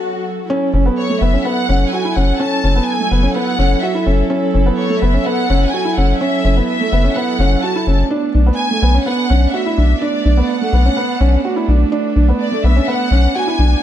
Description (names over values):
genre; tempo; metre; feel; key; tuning
piano and strings electronica; 126 BPM; 4/4; straight; F# minor; A4 = 439 Hz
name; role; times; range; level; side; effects
dark studio string section; sustained chords; 0.0-13.8 s; F#3 to A4; -23 LUFS; right 3 dB; none
swell; sound effects; 0.0-0.5 s; none; -26 LUFS; left 5 dB; none
felt-muted upright piano; riff; 0.5-13.8 s; A3 to F#4; -18 LUFS; right 2 dB; digital delay
round analog bass; bass; 0.7-13.8 s; F#1 to B1; -13 LUFS; left 1 dB; none
warm symphonic violin section; melody; 1.0-13.8 s; C#5 to A5; -21 LUFS; left 2 dB; none
room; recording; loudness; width
light reverb, studio ambience; dark, warm production; -13 LUFS; side -11 dB against mid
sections
0.5-13.8 A section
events
break 0.0-0.5; swell 0.0-0.5; drop 0.5-13.8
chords
0.5 F#m7; 8.1 Bm7